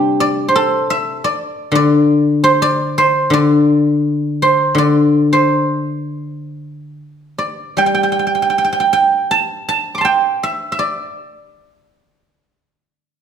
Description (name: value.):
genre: chinese traditional, Chinese solo plucked strings.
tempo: 81 BPM.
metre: 4/4.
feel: uneven beats, rubato.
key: D shang mode.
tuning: A4 = 442 Hz.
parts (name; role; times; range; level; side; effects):
guzheng; solo; 0.0-12.6 s; C3 to D6; -13 LUFS; equal; none.
room: moderate recital hall reverb, RT60 1.3 s.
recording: none.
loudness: -13 LUFS.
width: side -8 dB against mid.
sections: 0.0-13.2 A section.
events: none.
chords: none.